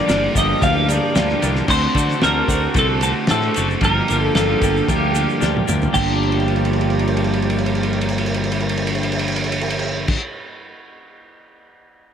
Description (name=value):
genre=indie rock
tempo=112 BPM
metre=4/4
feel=straight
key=G minor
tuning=A4 = 439 Hz
part: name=twelve-string electric guitar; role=melody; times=0.0-10.1 s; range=G4 to F5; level=-21 LUFS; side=right 1 dB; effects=spring reverb, analog delay
part: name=sweeping resonant pad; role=sustained chords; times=0.0-10.2 s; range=Bb3 to D6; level=-32 LUFS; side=right 1 dB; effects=chorus
part: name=twelve-string electric guitar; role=riff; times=0.0-10.2 s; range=G2 to G4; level=-24 LUFS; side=left 12 dB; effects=lush chorus
part: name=twelve-string electric guitar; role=riff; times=0.0-10.2 s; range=G2 to G4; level=-24 LUFS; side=right 8 dB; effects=wide subtle chorus
part: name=picked electric bass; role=bass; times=0.1-10.2 s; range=F#1 to D3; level=-22 LUFS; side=equal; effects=none
part: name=cloth-damped thuddy drum kit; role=drums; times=0.1-10.2 s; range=crash cymbal, kick drum, ride cymbal, snare drum, toms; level=-22 LUFS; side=right 1 dB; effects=none
part: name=tube shaker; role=percussion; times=0.1-10.1 s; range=none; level=-32 LUFS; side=right 10 dB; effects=none
room=light reverb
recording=none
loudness=-16 LUFS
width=side -8 dB against mid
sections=0.0-6.0 A section; 6.0-10.2 B section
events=drum fill 5.4-6.0, 6.2-10.1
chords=0.0 Gm7; 1.7 D7; 3.8 Gm7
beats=0.08 0.61 1.15 | 1.68 2.22 2.75 3.29 | 3.82 4.35 4.89 5.42 | 5.96 6.49 7.03 7.56 | 8.09 8.63 9.16 9.70